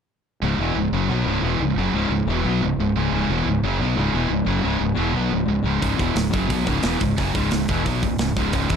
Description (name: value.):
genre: heavy metal.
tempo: 178 BPM.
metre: 4/4.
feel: straight.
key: C# minor.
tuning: A4 = 437 Hz.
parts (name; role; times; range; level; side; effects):
scooped high-gain guitar; riff; 0.4-8.8 s; C#2 to B3; -24 LUFS; right 13 dB; distortion.
sludgy distorted guitar; riff; 0.4-8.8 s; C#2 to B3; -24 LUFS; left 10 dB; overdrive.
fuzz fingered electric bass; bass; 0.4-8.8 s; C#1 to B1; -25 LUFS; equal; overdrive.
tight metal drum kit; drums; 5.8-8.8 s; hi-hat, kick drum, snare drum; -25 LUFS; right 1 dB; none.
room: light reverb.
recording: dark, warm production.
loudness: -19 LUFS.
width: side -7 dB against mid.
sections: 0.4-8.8 A section.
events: none.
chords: 0.4 C#m.